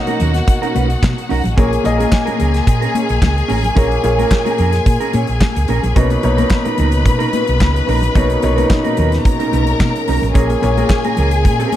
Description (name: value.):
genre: disco.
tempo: 109 BPM.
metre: 4/4.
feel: straight.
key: unclear.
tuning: A4 = 440 Hz.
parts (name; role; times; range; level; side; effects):
clear studio string section; second line; 0.0-11.8 s; F#4 to B5; -21 LUFS; left 3 dB; none.
warm concert grand piano; accompaniment; 0.0-11.8 s; A#2 to D#5; -20 LUFS; left 1 dB; none.
mellow electric guitar; accompaniment; 0.1-11.8 s; C#4 to C#5; -24 LUFS; right 8 dB; none.
damped 70s drum kit; drums; 0.1-11.8 s; handclaps, hi-hat, kick drum, snare drum; -17 LUFS; equal; none.
congas; percussion; 0.1-11.8 s; none; -25 LUFS; left 4 dB; none.
hollow-body short-scale fingered electric bass; bass; 0.2-11.6 s; A1 to B2; -17 LUFS; equal; none.
mellow French horn section; sustained chords; 6.0-11.8 s; C#3 to G#4; -25 LUFS; right 2 dB; stereo widening.
room: small room ambience.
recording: none.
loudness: -12 LUFS.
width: side -12 dB against mid.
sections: 0.0-11.8 A section.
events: none.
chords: 0.0 Bmaj9; 1.6 A#m7; 6.0 Bmaj9; 10.4 A#m7.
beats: 0.48 1.03 | 1.57 2.12 2.67 3.22 | 3.77 4.32 4.87 5.41 | 5.96 6.51 7.06 7.61 | 8.16 8.71 9.25 9.80 | 10.35 10.90 11.45.